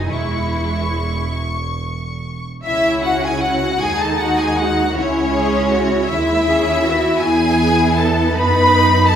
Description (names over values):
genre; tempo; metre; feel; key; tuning
classical, slow romantic movement for string orchestra; 46-55 BPM (dotted quarters); 6/8; rubato; C# minor; A4 = 440 Hz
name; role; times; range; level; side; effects
clear studio violin section; melody; 0.0-9.2 s; C#5 to C#6; -19 LUFS; left 2 dB; none
rich studio violin section; second line; 0.0-9.2 s; C#4 to B4; -22 LUFS; left 2 dB; none
warm studio viola section; accompaniment; 0.0-9.2 s; G#3 to E4; -22 LUFS; right 1 dB; none
rich studio double bass section; bass; 0.0-9.2 s; E1 to F#2; -22 LUFS; right 3 dB; none
warm symphonic cello section; bass; 0.0-9.2 s; E3 to G#4; -22 LUFS; right 1 dB; none
room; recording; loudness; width
wet recital hall reverb, RT60 1.4 s; recorded in a church or concert hall; -14 LUFS; side -9 dB against mid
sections
0.0-2.6 A section; 2.6-9.2 A section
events
none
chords
0.1 C#m/E; 2.6 C#m; 3.8 G#5/D#; 5.0 C#m; 7.2 E; 8.3 B/F#